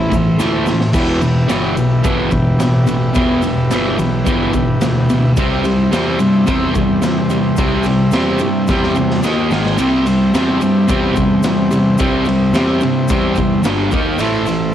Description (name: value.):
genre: garage rock duo or trio.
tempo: 109 BPM.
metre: 4/4.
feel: straight.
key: E minor.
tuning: A4 = 440 Hz.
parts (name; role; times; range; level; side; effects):
combo organ; sustained chords; 0.0-14.7 s; E4 to C5; -24 LUFS; equal; spring reverb, cassette tape.
fuzz guitar; riff; 0.0-14.7 s; E2 to D#4; -14 LUFS; equal; distortion, cassette tape.
fuzz picked electric bass; bass; 0.0-14.7 s; E1 to G2; -23 LUFS; equal; overdrive.
raw garage drum kit; drums; 0.1-14.6 s; crash cymbal, kick drum, ride cymbal, snare drum; -20 LUFS; equal; cassette tape.
tube shaker; percussion; 0.1-14.6 s; none; -36 LUFS; left 9 dB; none.
room: light reverb.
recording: home recording on cassette.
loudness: -12 LUFS.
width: side -10 dB against mid.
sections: 0.9-14.7 A section.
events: drum fill 0.4-0.9, 8.7-9.8.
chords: 0.0 Am; 0.9 Em; 5.4 C; 9.2 D#5; 9.5 G#5; 9.8 C; 13.6 G5; 13.9 D#5; 14.2 Am.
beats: 0.39 | 0.94 1.50 2.05 2.60 | 3.15 3.71 4.26 4.81 | 5.37 5.92 6.47 7.03 | 7.58 8.13 8.68 9.23 | 9.79 10.34 10.89 11.44 | 11.99 12.54 13.10 13.65 | 14.20.